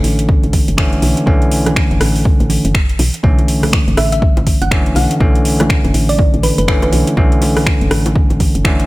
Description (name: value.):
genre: deep house.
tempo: 122 BPM.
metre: 4/4.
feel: swing 60% on 16ths.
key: B minor.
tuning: A4 = 440 Hz.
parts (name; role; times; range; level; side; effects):
bell-like tine electric piano; stabs; 0.0-8.9 s; D3 to C#4; -16 LUFS; equal; vintage 12-bit sampler grit, sidechain pumping, tape echo.
woody FM bass; bass; 0.0-8.9 s; F#1 to B1; -17 LUFS; equal; sidechain pumping.
deep house drum kit; drums; 0.0-8.9 s; finger snaps, hi-hat, rim click; -20 LUFS; equal; overdrive, studio ambience.
electronic kick drum; drums; 0.3-8.8 s; none; -14 LUFS; equal; overdrive, studio ambience.
congas and bongos; percussion; 0.5-8.8 s; none; -24 LUFS; right 2 dB; none.
thumb-piano-like synth pluck; melody; 4.0-6.9 s; B4 to F#5; -21 LUFS; equal; chorus, tape echo.
room: little or no reverb.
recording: none.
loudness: -11 LUFS.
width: side -19 dB against mid.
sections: 0.0-8.9 A section.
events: none.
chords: 0.0 Bm11.